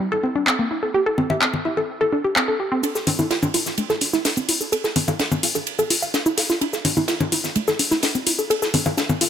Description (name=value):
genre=melodic techno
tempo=127 BPM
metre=4/4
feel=straight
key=D minor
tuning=A4 = 439 Hz
part: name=warbly dusty pluck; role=arpeggios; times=0.0-9.3 s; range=A3 to F5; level=-21 LUFS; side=equal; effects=chorus, dub echo
part: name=techno drum kit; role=drums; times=0.5-9.3 s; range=congas, handclaps, hi-hat, shaker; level=-22 LUFS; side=left 2 dB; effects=tape echo
part: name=modern studio drum kit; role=drums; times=2.8-9.3 s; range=ride cymbal, snare drum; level=-28 LUFS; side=right 2 dB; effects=high-pass filter on cymbals, high-pass filter on snare, high-pass filter on room
room=moderate spring reverb, RT60 2.2 s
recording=echo-heavy mix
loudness=-18 LUFS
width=side -9 dB against mid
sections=0.0-2.8 A section; 2.8-9.3 B section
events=build-up 2.8-9.3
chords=none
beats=0.00 0.47 | 0.94 1.42 1.89 2.36 | 2.83 3.31 3.78 4.25 | 4.72 5.20 5.67 6.14 | 6.61 7.08 7.56 8.03 | 8.50 8.97